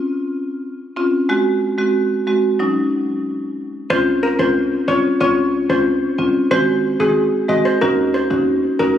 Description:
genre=dancehall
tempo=92 BPM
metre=4/4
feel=straight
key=Db major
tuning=A4 = 443 Hz
part: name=marimba with medium mallets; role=accompaniment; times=1.0-8.9 s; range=Gb3 to Gb4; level=-16 LUFS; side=equal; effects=none
part: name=steel pan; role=melody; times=3.9-8.9 s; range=Ab4 to Eb5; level=-20 LUFS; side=left 1 dB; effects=tape echo
part: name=hard-hitting 808-style bass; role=bass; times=3.9-8.9 s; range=Ab1 to Eb2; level=-27 LUFS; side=right 1 dB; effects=none
room=light reverb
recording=recorded on a phone in the room, studio reverb, compression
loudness=-15 LUFS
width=side -10 dB against mid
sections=0.0-3.9 A section; 3.9-9.0 B section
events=none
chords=0.0 Dbmaj7; 1.3 Ab7; 2.6 Ebm7; 3.9 Dbmaj7; 6.5 Ab7; 7.8 Ebm7

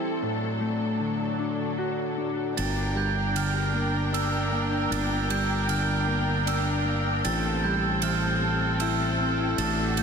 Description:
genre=post-rock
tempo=77 BPM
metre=3/4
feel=straight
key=G dorian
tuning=A4 = 442 Hz
part: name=clear studio string section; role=sustained chords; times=0.0-10.0 s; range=A2 to G5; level=-31 LUFS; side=equal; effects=none
part: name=mellow electric guitar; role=arpeggios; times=0.0-10.0 s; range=G2 to F#4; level=-29 LUFS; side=left 2 dB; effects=wide subtle chorus, tape echo
part: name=glockenspiel with soft plastic mallets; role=arpeggios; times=2.6-10.0 s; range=E6 to A6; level=-30 LUFS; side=right 6 dB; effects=tape echo
part: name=fingered electric bass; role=bass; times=2.6-10.0 s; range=G1 to A1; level=-28 LUFS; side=right 1 dB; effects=none
part: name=ride cymbal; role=drums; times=2.6-10.0 s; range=none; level=-36 LUFS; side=right 6 dB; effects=none
room=wet huge ambient reverb, RT60 4.2 s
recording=dreamy mix soaked in reverb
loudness=-24 LUFS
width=side -6 dB against mid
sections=0.0-2.6 A section; 2.6-10.0 A section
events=none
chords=0.2 D/A; 2.6 Gm; 7.3 Am7

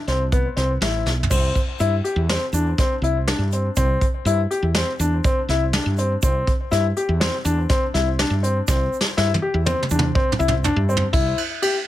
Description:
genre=progressive instrumental, band music in an uneven meter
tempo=122 BPM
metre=5/4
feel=straight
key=C major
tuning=A4 = 440 Hz
part: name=warm grand piano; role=arpeggios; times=0.1-11.8 s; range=B3 to G4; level=-23 LUFS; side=left 3 dB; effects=ping-pong delay
part: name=woody fretless electric bass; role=bass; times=0.1-11.3 s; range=A1 to G2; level=-21 LUFS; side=right 1 dB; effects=none
part: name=vintage brush drum kit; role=drums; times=0.1-11.7 s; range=crash cymbal, hi-hat, kick drum, ride cymbal, snare drum, toms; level=-22 LUFS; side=right 1 dB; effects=none
part: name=egg shaker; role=percussion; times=1.3-11.0 s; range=none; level=-34 LUFS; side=right 14 dB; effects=none
room=little or no reverb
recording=none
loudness=-18 LUFS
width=side -13 dB against mid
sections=0.0-1.3 A section; 1.3-11.1 B section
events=drum fill 1.1, 8.7-11.1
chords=0.0 Cmaj7; 1.3 C

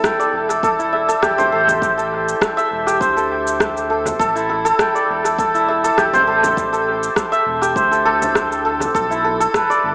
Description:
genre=organic downtempo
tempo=101 BPM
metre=4/4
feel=straight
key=A minor pentatonic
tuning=A4 = 439 Hz
part: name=santur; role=arpeggios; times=0.0-9.9 s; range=E4 to G5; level=-15 LUFS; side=equal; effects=dub echo, shimmer reverb
part: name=electronic kick drum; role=drums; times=0.0-9.7 s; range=none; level=-29 LUFS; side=equal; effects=small room ambience
part: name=electronic rim click and shaker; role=drums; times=0.0-9.8 s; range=none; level=-24 LUFS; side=equal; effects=small room ambience, dub echo
part: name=smooth gliding synth bass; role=bass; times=0.3-9.9 s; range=E1 to D2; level=-32 LUFS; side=equal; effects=sidechain pumping
part: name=frame drum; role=percussion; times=1.4-8.9 s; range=none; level=-33 LUFS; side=equal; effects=none
room=wet plate reverb, RT60 2.1 s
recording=echo-heavy mix, small speaker sound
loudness=-14 LUFS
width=side -26 dB against mid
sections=0.0-9.9 A section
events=none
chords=0.0 Am7; 8.9 G

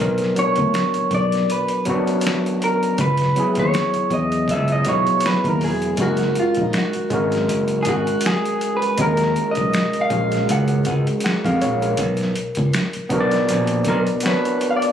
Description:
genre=R&B, neo-soul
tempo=80 BPM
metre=4/4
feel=swing 56% on 16ths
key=unclear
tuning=A4 = 440 Hz
part: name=overdriven tine electric piano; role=accompaniment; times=0.0-14.9 s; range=F#3 to F#5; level=-21 LUFS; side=left 1 dB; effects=auto-pan
part: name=modern bright fingered electric bass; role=bass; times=0.0-14.1 s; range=E1 to E#2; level=-22 LUFS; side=equal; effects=none
part: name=boom bap sampler-style drum kit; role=drums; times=0.2-14.9 s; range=finger snaps, hi-hat, kick drum, snare drum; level=-26 LUFS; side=right 1 dB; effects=overdrive
part: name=electric guitar through a small old amp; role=melody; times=0.4-14.8 s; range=D#4 to F#5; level=-21 LUFS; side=right 1 dB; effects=slapback echo
room=little or no reverb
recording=recorded on a phone in the room, club reverb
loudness=-17 LUFS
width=side -9 dB against mid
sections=0.0-14.9 A section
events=clean electric guitar solo 0.0-14.9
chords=0.0 Bm; 3.0 C#m7; 6.0 F#add9; 9.0 D#m9 (rootless); 12.0 Bm

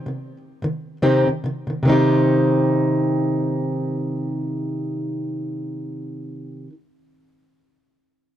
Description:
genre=pop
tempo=71 BPM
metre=4/4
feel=swing 60% on 16ths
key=C minor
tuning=A4 = 445 Hz
part: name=fingerpicked plugged-in acoustic archtop guitar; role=accompaniment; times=0.0-6.8 s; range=C3 to G4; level=-19 LUFS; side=equal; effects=none
room=small room ambience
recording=dry, close 1970s-style studio recording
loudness=-19 LUFS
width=side -11 dB against mid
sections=0.0-1.9 A section; 1.9-5.2 B section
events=slowing down 0.0-1.9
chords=0.0 Cm

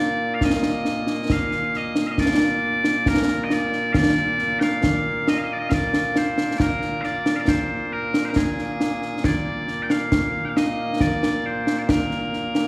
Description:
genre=scottish traditional, Scottish pipe music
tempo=68 BPM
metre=3/4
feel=straight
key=Bb mixolydian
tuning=A4 = 440 Hz
part: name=loud bright bagpipes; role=melody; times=0.0-12.7 s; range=Bb2 to G5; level=-26 LUFS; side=equal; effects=none
part: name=concert snare drum and concert bass drum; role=drums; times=0.4-12.7 s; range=none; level=-24 LUFS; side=equal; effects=none
room=wet scoring stage reverb, RT60 2.1 s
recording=heard from further back in the room, small room ambience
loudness=-22 LUFS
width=mono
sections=0.0-12.7 A section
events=none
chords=none

